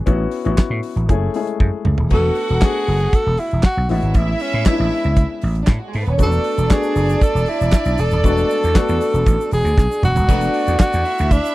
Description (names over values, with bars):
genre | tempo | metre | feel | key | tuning
disco | 118 BPM | 4/4 | straight | unclear | A4 = 442 Hz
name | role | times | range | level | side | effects
warm grand piano | accompaniment | 0.0-11.5 s | G#3 to G#4 | -25 LUFS | left 6 dB | none
vintage slap bass | bass | 0.1-11.4 s | D#1 to A2 | -18 LUFS | equal | none
damped 70s drum kit | drums | 0.1-11.5 s | crash cymbal, handclaps, hi-hat, kick drum, snare drum, toms | -16 LUFS | equal | none
breathy tenor saxophone | melody | 2.1-11.5 s | C#4 to A4 | -20 LUFS | right 1 dB | none
warm studio violin section | second line | 2.1-11.5 s | G#3 to F#5 | -25 LUFS | right 2 dB | none
egg shaker | percussion | 6.2-11.5 s | none | -41 LUFS | right 19 dB | none
room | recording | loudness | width
little or no reverb | dry, close 1970s-style studio recording | -15 LUFS | side -17 dB against mid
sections
0.0-2.1 A section; 2.1-10.3 B section; 10.3-11.5 C section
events
drum fill 1.6-2.1, 9.8-10.3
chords
0.1 A69; 1.1 F#m7; 2.1 E7sus4; 3.9 Amaj9; 6.2 E7sus4; 10.3 E9sus4